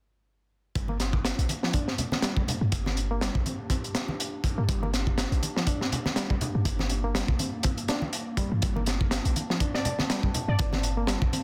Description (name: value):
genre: breakbeat, breaks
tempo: 122 BPM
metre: 4/4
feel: swing 56% on 16ths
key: G minor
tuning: A4 = 440 Hz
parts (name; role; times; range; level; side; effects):
- warbly tape-like pad; sustained chords; 1.4-11.4 s; Bb3 to A5; -42 LUFS; equal; chorus, built-in reverb, sidechain pumping
- reed electric piano; riff; 0.8-11.4 s; F3 to D4; -37 LUFS; equal; dub echo
- warm 808-style bass; bass; 0.8-11.3 s; G1 to G2; -31 LUFS; equal; none
- crunchy breakbeat drum kit; drums; 0.8-11.4 s; hi-hat, kick drum, snare drum; -30 LUFS; equal; none
- congas; percussion; 0.9-11.4 s; none; -37 LUFS; equal; none
- glassy wavetable pluck; melody; 9.7-10.7 s; D5; -38 LUFS; equal; chorus, telephone sound, dub echo
room: light reverb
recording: dense, heavily limited modern master, faint mains hum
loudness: -28 LUFS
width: mono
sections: 0.8-11.4 A section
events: none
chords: 0.8 Gm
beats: | 0.76 1.25 1.74 2.23 | 2.72 3.21 3.71 4.20 | 4.69 5.18 5.67 6.17 | 6.66 7.15 7.64 8.13 | 8.62 9.12 9.61 10.10 | 10.59 11.08